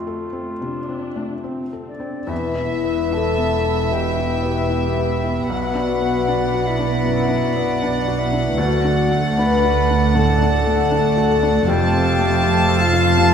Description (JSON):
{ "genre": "cinematic, emotional film score for orchestra", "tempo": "77 BPM", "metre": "4/4", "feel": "uneven beats, rubato", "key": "E minor", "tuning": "A4 = 439 Hz", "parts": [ { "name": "clear clarinet", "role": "second line", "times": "0.0-13.3 s", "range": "F4 to F#5", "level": "-29 LUFS", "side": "equal", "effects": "none" }, { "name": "dark symphonic viola section", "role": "accompaniment", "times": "0.0-13.3 s", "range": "A3 to D4", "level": "-31 LUFS", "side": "equal", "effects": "none" }, { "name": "felt-muted upright piano", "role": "accompaniment", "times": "0.0-13.3 s", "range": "B1 to A4", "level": "-26 LUFS", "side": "left 2 dB", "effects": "none" }, { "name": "concert flute", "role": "second line", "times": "1.9-13.3 s", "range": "D5 to B5", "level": "-28 LUFS", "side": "equal", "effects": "none" }, { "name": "mellow French horn section", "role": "sustained chords", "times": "1.9-13.3 s", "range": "D4 to B4", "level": "-23 LUFS", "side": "left 6 dB", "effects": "none" }, { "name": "warm symphonic violin section", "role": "melody", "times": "2.3-13.3 s", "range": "E5 to A5", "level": "-25 LUFS", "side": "left 2 dB", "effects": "none" }, { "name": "mellow oboe", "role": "second line", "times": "2.3-13.3 s", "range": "A5 to B5", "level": "-31 LUFS", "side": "right 3 dB", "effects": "none" }, { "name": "warm symphonic violin section", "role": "second line", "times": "2.3-13.3 s", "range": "C5 to E5", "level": "-31 LUFS", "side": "left 1 dB", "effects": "none" }, { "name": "concert harp", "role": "arpeggios", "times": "2.3-13.3 s", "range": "B2 to E6", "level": "-27 LUFS", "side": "left 7 dB", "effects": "none" }, { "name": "dark symphonic double bass section", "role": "bass", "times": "2.3-13.3 s", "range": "E1 to D2", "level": "-23 LUFS", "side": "right 5 dB", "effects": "none" }, { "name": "warm symphonic cello section", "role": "bass", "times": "2.3-13.3 s", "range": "D2 to B2", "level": "-25 LUFS", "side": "right 5 dB", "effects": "none" } ], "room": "moderate scoring stage reverb, RT60 1.8 s", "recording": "none", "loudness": "-16 LUFS", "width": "side -7 dB against mid", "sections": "0.0-2.3 A section; 2.3-13.3 A section", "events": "none", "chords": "0.0 F; 2.3 Em; 5.5 Bm; 8.6 D; 11.7 F" }